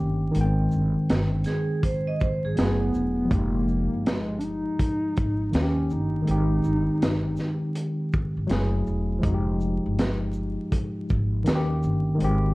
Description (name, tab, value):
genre	lo-fi hip hop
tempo	81 BPM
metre	4/4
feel	swing 65% on 16ths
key	F minor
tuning	A4 = 440 Hz
part	tine electric piano	accompaniment	0.0-12.5 s	Eb3 to G5	-26 LUFS	equal	medium stereo tremolo, cassette tape, low-pass filter, plate reverb
part	upright bass	bass	0.0-12.5 s	Fb1 to Eb2	-28 LUFS	equal	none
part	crunchy breakbeat drum kit	drums	0.3-12.4 s	hi-hat, kick drum, shaker, snare drum	-27 LUFS	equal	none
part	vibraphone with hard mallets	second line	1.5-2.8 s	Ab4 to Eb5	-30 LUFS	right 4 dB	low-pass filter, tape echo, plate reverb
part	hollow clarinet-like synth lead	melody	2.6-8.1 s	Ab3 to Eb4	-28 LUFS	equal	chorus, tremolo, low-pass filter, plate reverb
room	moderate studio reverb, RT60 0.7 s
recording	dark, warm production, vinyl crackle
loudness	-22 LUFS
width	side -21 dB against mid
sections	0.0-12.5 A section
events	none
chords	0.3 Abmaj7; 2.6 Gbm9; 3.3 Fm9; 5.5 Eb7; 6.3 Abmaj7; 8.5 Gbm9; 9.2 Fm9; 11.5 Eb7